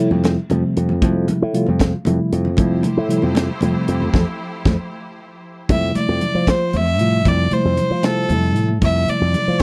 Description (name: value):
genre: electric jazz fusion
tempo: 77 BPM (dotted quarters)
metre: 6/8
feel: straight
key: F major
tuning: A4 = 439 Hz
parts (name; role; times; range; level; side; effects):
- mellow reed electric piano; accompaniment; 0.0-9.6 s; C3 to F4; -23 LUFS; equal; spring reverb
- slap bass with an envelope filter; bass; 0.0-9.6 s; F2 to F3; -22 LUFS; equal; none
- congas; percussion; 0.1-9.6 s; none; -28 LUFS; equal; none
- tight funk drum kit; drums; 0.2-9.6 s; hi-hat, kick drum, snare drum; -22 LUFS; equal; none
- clear studio string section; sustained chords; 2.6-5.7 s; F3 to C5; -33 LUFS; equal; none
- clear violin; melody; 5.7-9.6 s; A4 to E5; -23 LUFS; equal; slapback echo
room: little or no reverb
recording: dry, close 1970s-style studio recording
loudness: -18 LUFS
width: mono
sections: 0.0-5.7 A section; 5.7-9.6 B section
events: band accent 4.1-5.7; drum fill 4.9-5.7; reed electric piano fill 4.9-5.7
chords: 0.0 Fmaj9